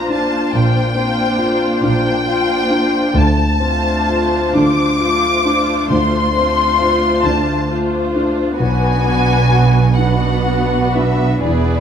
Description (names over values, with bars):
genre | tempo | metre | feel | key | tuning
cinematic | 39-47 BPM (dotted quarters) | 6/8 | rubato | unclear | A4 = 440 Hz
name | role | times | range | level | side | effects
muted symphonic violin section | melody | 0.0-11.8 s | D5 to D6 | -19 LUFS | left 4 dB | none
muted symphonic violin section | second line | 0.0-11.8 s | F4 to C5 | -21 LUFS | left 1 dB | none
dark concert grand piano | accompaniment | 0.0-11.8 s | B1 to F#4 | -18 LUFS | left 2 dB | none
muted symphonic viola section | accompaniment | 0.0-11.8 s | A3 to E4 | -23 LUFS | right 1 dB | none
muted symphonic cello section | bass | 0.0-11.8 s | E2 to D3 | -20 LUFS | right 3 dB | none
muted symphonic double bass section | bass | 0.0-11.8 s | E1 to D2 | -22 LUFS | right 4 dB | none
room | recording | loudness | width
wet recital hall reverb, RT60 1.3 s | none | -13 LUFS | side -8 dB against mid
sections
0.0-11.8 A section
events
none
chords
0.0 Bbadd9; 3.1 Dm7; 8.6 Bm